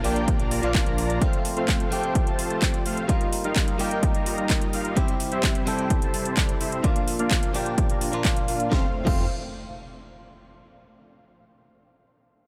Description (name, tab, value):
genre	EDM, festival progressive house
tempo	128 BPM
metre	4/4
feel	straight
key	F major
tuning	A4 = 438 Hz
part	direct-recorded clean electric guitar	accompaniment	0.0-9.3 s	Bb2 to A4	-32 LUFS	equal	vintage 12-bit sampler grit, sidechain pumping, digital delay
part	lush unison pad	sustained chords	0.0-8.9 s	A3 to Bb5	-39 LUFS	equal	none
part	dense compressed supersaw	riff	0.0-9.2 s	G3 to Bb5	-32 LUFS	equal	sidechain pumping, low-pass filter, digital delay
part	fat analog bass	bass	0.0-1.2, 8.7-9.3 s	F1 to Bb1	-31 LUFS	equal	sidechain pumping
part	house drum kit	drums	0.0-9.2 s	crash cymbal, handclaps, hi-hat, snare drum	-32 LUFS	equal	overdrive
part	electronic kick drum	drums	0.3-9.2 s	none	-26 LUFS	equal	overdrive
part	impact	sound effects	8.9-10.6 s	none	-40 LUFS	equal	none
room	little or no reverb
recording	none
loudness	-24 LUFS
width	mono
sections	0.0-8.7 A section; 8.7-10.6 B section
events	filter sweep on supersaw synth 0.0-8.7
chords	0.0 Bb; 1.2 F; 3.1 Ebadd9; 5.0 C; 6.8 Bb; 8.7 F